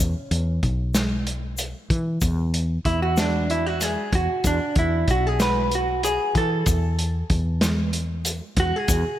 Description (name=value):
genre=progressive instrumental, band music in an uneven meter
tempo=189 BPM (eighths)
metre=7/8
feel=straight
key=E mixolydian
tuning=A4 = 440 Hz
part: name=vintage hollow-body jazz guitar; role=accompaniment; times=0.0-9.2 s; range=C#4 to B4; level=-24 LUFS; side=right 1 dB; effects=slapback echo
part: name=woody fretless electric bass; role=bass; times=0.0-9.0 s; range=B1 to E3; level=-24 LUFS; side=equal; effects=none
part: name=vintage drum kit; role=drums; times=0.3-9.0 s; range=hi-hat, kick drum, snare drum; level=-25 LUFS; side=equal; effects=none
part: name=egg shaker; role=percussion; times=0.9-9.2 s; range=none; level=-33 LUFS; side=left 6 dB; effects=none
room=moderate lush hall reverb, RT60 2.5 s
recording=big arena sound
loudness=-20 LUFS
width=side -12 dB against mid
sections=0.0-9.2 A section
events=hollow-body jazz guitar solo 0.0-9.2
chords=0.0 E5; 6.7 E